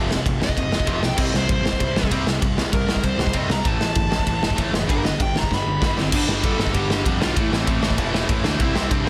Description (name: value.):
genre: punk rock.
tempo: 194 BPM.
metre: 4/4.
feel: straight.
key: C major.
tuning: A4 = 440 Hz.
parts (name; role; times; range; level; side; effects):
overdriven semi-hollow guitar; riff; 0.0-9.1 s; F2 to C4; -28 LUFS; equal; none.
fuzz picked electric bass; bass; 0.0-9.1 s; E1 to F2; -29 LUFS; equal; overdrive.
raw garage drum kit; drums; 0.1-9.1 s; crash cymbal, kick drum, ride cymbal, snare drum; -24 LUFS; equal; none.
bluesy overdriven lead guitar; melody; 0.4-9.1 s; C4 to B5; -29 LUFS; equal; distortion.
room: little or no reverb.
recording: dense, heavily limited modern master, faint mains hum.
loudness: -21 LUFS.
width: mono.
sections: 0.0-6.1 A section; 6.1-9.1 B section.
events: lead electric guitar solo 0.0-6.1; drum fill 5.5-6.1.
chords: 0.0 F5; 1.2 C5; 3.7 A5; 4.9 G; 6.1 G5; 7.4 Am; 8.6 C.